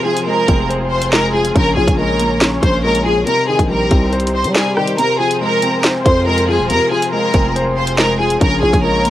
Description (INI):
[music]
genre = hip hop, drill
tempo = 140 BPM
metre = 4/4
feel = half-time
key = F minor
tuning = A4 = 440 Hz
[part]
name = felt-muted upright piano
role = accompaniment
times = 0.0-9.1 s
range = C3 to C5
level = -20 LUFS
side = left 3 dB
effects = cassette tape
[part]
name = muted studio string section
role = sustained chords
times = 0.0-9.1 s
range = C3 to Db5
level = -24 LUFS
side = equal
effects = cassette tape
[part]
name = rich studio violin section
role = melody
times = 0.1-9.1 s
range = G4 to C6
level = -16 LUFS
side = equal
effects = cassette tape
[part]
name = drill drum kit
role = drums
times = 0.2-9.1 s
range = handclaps, hi-hat, kick drum, rim click, snare drum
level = -16 LUFS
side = equal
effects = none
[part]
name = growling 808-style bass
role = bass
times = 0.5-9.1 s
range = Eb1 to G3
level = -19 LUFS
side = equal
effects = none
[sound]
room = light reverb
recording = home recording on cassette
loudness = -12 LUFS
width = side -13 dB against mid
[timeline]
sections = 0.0-9.1 A section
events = kick muted 5.0-5.8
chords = 0.0 Fm; 1.6 Bbm7; 3.3 Cm; 5.0 Fm; 8.4 Bbm7